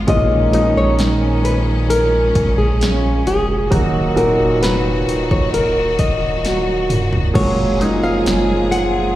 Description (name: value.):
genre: pop ballad.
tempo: 66 BPM.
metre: 4/4.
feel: straight.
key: unclear.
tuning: A4 = 440 Hz.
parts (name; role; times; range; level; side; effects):
warm grand piano; accompaniment; 0.0-9.2 s; A#2 to F#4; -21 LUFS; right 1 dB; slapback echo.
bright studio string section; sustained chords; 0.0-9.2 s; A#2 to G#4; -23 LUFS; equal; none.
saturated sub bass; bass; 0.0-9.2 s; D#1 to A#1; -21 LUFS; equal; none.
nylon-string guitar; melody; 0.1-9.2 s; G#4 to F#5; -20 LUFS; left 2 dB; slapback echo, ping-pong delay.
warm French horn section; second line; 0.1-9.2 s; C#3 to F#4; -22 LUFS; right 1 dB; slapback echo.
deep house drum kit; drums; 0.1-8.9 s; crash cymbal, hi-hat, kick drum, snare drum, toms; -20 LUFS; equal; overdrive.
room: small room ambience.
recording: live gig heard through the venue's PA, recital hall reverb.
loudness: -14 LUFS.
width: side -14 dB against mid.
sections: 0.0-9.2 A section.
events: drum fill 6.4-7.4.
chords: 0.1 A#m7; 3.7 D#m; 7.4 F#add9.